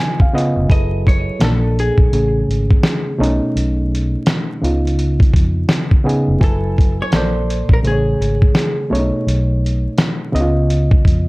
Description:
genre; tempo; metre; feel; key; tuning
lo-fi hip hop; 84 BPM; 4/4; swing 62% on 16ths; unclear; A4 = 441 Hz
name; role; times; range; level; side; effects
reed electric piano; accompaniment; 0.0-11.3 s; A#2 to G#5; -19 LUFS; right 1 dB; low-pass filter
dusty soul sampler-style drum kit; drums; 0.0-11.3 s; hi-hat, kick drum, snare drum; -14 LUFS; equal; none
vintage muted fingered electric bass; bass; 0.6-11.3 s; E#1 to E#2; -18 LUFS; equal; tube saturation
vintage hollow-body jazz guitar; melody; 0.7-8.9 s; G#4 to D#5; -24 LUFS; equal; low-pass filter, analog delay
room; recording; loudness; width
light reverb; dry, gritty hardware recording, vinyl crackle; -13 LUFS; side -23 dB against mid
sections
0.0-11.3 A section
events
none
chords
0.0 C#9; 0.7 F#m11; 1.4 A#maj7; 2.1 Amaj7; 3.2 B9; 4.6 C#9; 6.4 F#m11; 7.1 A#maj7; 7.8 Amaj7; 8.9 B9; 10.3 C#9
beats
| 0.69 1.41 2.12 2.84 | 3.55 4.27 4.98 5.70 | 6.41 7.12 7.84 8.55 | 9.27 9.98 10.70

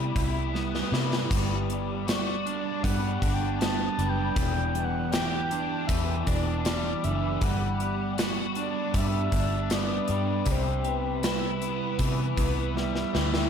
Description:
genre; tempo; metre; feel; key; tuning
rock, shoegaze and dream pop; 79 BPM; 4/4; straight; G major; A4 = 440 Hz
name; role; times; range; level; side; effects
biting overdriven guitar; riff; 0.0-13.5 s; E2 to G4; -32 LUFS; left 8 dB; ensemble chorus
clean electric guitar; riff; 0.0-13.5 s; C3 to E4; -32 LUFS; right 10 dB; reverse reverb
vintage muted fingered electric bass; bass; 0.0-13.5 s; E1 to C3; -30 LUFS; equal; none
gated 80s drum kit; drums; 0.2-13.5 s; hi-hat, kick drum, snare drum, splash cymbal; -29 LUFS; equal; none
breathy flute-like synth lead; melody; 2.1-13.5 s; B4 to A5; -34 LUFS; left 1 dB; chorus, ping-pong delay
room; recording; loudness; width
moderate plate reverb, RT60 1.8 s, small room reverb; dreamy mix soaked in reverb; -25 LUFS; side -7 dB against mid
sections
0.0-13.5 A section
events
drum fill 0.5-1.3, 12.8-13.5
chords
0.0 Cmaj7; 1.3 Gmaj7; 4.4 Em7; 7.4 Gmaj7; 10.5 Cmaj7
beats
0.54 | 1.30 2.07 2.83 3.60 | 4.36 5.12 5.89 6.65 | 7.42 8.18 8.94 9.71 | 10.47 11.23 12.00 12.76

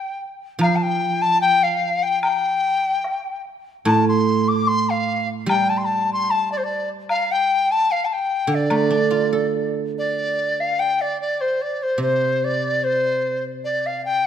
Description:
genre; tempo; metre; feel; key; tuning
chinese traditional, Chinese chamber ensemble; 74 BPM; 2/4; rubato; D yu mode; A4 = 440 Hz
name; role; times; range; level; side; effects
large dizi; melody; 0.0-14.3 s; C5 to D6; -20 LUFS; left 2 dB; none
guzheng; accompaniment; 0.6-14.3 s; A2 to A4; -22 LUFS; right 4 dB; none
woodblock; percussion; 0.6-8.9 s; none; -29 LUFS; left 3 dB; none
room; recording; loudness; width
moderate scoring stage reverb, RT60 2.1 s; none; -18 LUFS; side -9 dB against mid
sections
0.0-10.4 A section; 10.4-14.3 B section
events
none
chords
none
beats
| 0.60 1.41 | 2.22 3.04 | 3.87 4.68 | 5.49 6.29 | 7.09 7.89 | 8.70 9.52 | 10.36 11.19 | 12.01 12.83 | 13.64

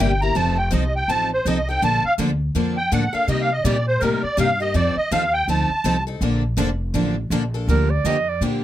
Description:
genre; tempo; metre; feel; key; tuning
acoustic string swing (jazz manouche); 164 BPM; 4/4; swing 60% on 8ths; Bb major; A4 = 439 Hz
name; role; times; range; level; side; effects
musette accordion; melody; 0.0-6.0 s; Bb4 to Bb5; -21 LUFS; right 1 dB; none
picked steel-string acoustic guitar; accompaniment; 0.0-8.6 s; C3 to A4; -25 LUFS; left 6 dB; none
picked steel-string acoustic guitar; accompaniment; 0.0-8.6 s; C3 to A4; -26 LUFS; right 6 dB; none
upright bass; bass; 0.0-8.6 s; F1 to C3; -23 LUFS; equal; none
breathy clarinet; second line; 7.7-8.4 s; Bb4 to Eb5; -22 LUFS; right 6 dB; none
room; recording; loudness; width
little or no reverb; close, detailed microphones; -18 LUFS; side -13 dB against mid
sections
0.0-7.7 A section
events
accordion solo 0.0-7.7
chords
0.4 F7; 1.8 Bbmaj7; 3.3 Cm7; 4.7 F7; 6.2 Bbmaj7; 7.7 Gm7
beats
0.00 | 0.36 0.73 1.09 1.46 | 1.82 2.19 2.55 2.92 | 3.29 3.65 4.02 4.38 | 4.75 5.11 5.48 5.84 | 6.21 6.58 6.94 7.31 | 7.67 8.04 8.40

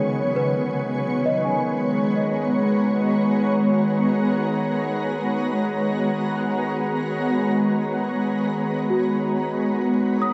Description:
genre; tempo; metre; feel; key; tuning
ambient; free time; none; none; G# minor; A4 = 442 Hz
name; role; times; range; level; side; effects
shimmering ambient pad; sustained chords; 0.0-10.3 s; C#3 to A#5; -24 LUFS; equal; chorus, built-in reverb
celesta; arpeggios; 0.0-10.3 s; F#4 to D#6; -30 LUFS; equal; diffuse ambient delay
bowed-like drone; drone; 0.0-10.3 s; D#3 to G#3; -30 LUFS; equal; built-in reverb
room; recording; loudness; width
wet concert hall reverb, RT60 2.4 s; dark, warm production; -22 LUFS; mono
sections
0.0-10.3 A section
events
none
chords
0.0 F#sus24; 1.0 G#m11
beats
free time

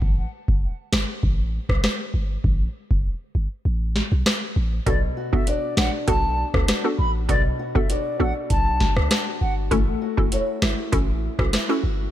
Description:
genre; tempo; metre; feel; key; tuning
dancehall; 99 BPM; 4/4; straight; unclear; A4 = 442 Hz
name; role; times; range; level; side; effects
warm 808-style bass; bass; 0.0-12.1 s; E1 to C#2; -24 LUFS; equal; none
booming analog drum machine; drums; 0.0-11.7 s; hi-hat, kick drum, rim click, snare drum; -22 LUFS; equal; none
wooden flute; melody; 4.9-9.5 s; D5 to B5; -28 LUFS; left 1 dB; ping-pong delay
hollow square pluck; accompaniment; 4.9-11.8 s; B3 to A4; -27 LUFS; right 1 dB; chorus, sidechain pumping
fingerpicked old ladder-braced acoustic guitar; arpeggios; 4.9-12.1 s; B2 to D5; -28 LUFS; left 3 dB; none
room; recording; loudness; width
little or no reverb; none; -20 LUFS; side -12 dB against mid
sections
0.0-12.1 A section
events
break 0.0-4.9; kick muted 3.7-4.9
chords
0.0 A5; 4.9 Bm7; 9.7 A6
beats
| 0.02 0.62 1.23 1.84 | 2.44 3.05 3.65 4.26 | 4.87 5.47 6.08 6.68 | 7.29 7.90 8.50 9.11 | 9.71 10.32 10.93 11.53

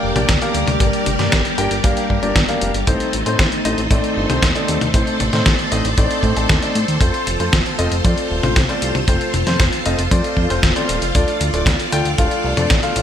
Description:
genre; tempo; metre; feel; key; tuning
italo disco; 116 BPM; 4/4; straight; G minor; A4 = 439 Hz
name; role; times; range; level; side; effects
string machine, full ensemble; sustained chords; 0.0-13.0 s; G3 to D5; -22 LUFS; equal; ensemble chorus
warm grand piano; stabs; 0.0-13.0 s; A3 to G5; -22 LUFS; left 2 dB; ping-pong delay
fat analog bass; bass; 0.0-13.0 s; D1 to A2; -22 LUFS; equal; tube saturation
dusty soul sampler-style drum kit; drums; 0.2-13.0 s; hi-hat, snare drum, toms; -21 LUFS; left 1 dB; gated reverb
kick drum; drums; 0.3-12.8 s; none; -18 LUFS; equal; none
room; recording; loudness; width
light reverb, small room ambience; bright 1980s-style digital production; -15 LUFS; side -9 dB against mid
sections
0.0-13.0 A section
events
none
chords
0.0 Gm; 2.9 Adim; 7.0 F; 11.1 Dm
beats
0.29 | 0.80 1.32 1.84 2.35 | 2.87 3.39 3.91 4.42 | 4.94 5.46 5.98 6.49 | 7.01 7.53 8.04 8.56 | 9.08 9.60 10.11 10.63 | 11.15 11.67 12.18 12.70

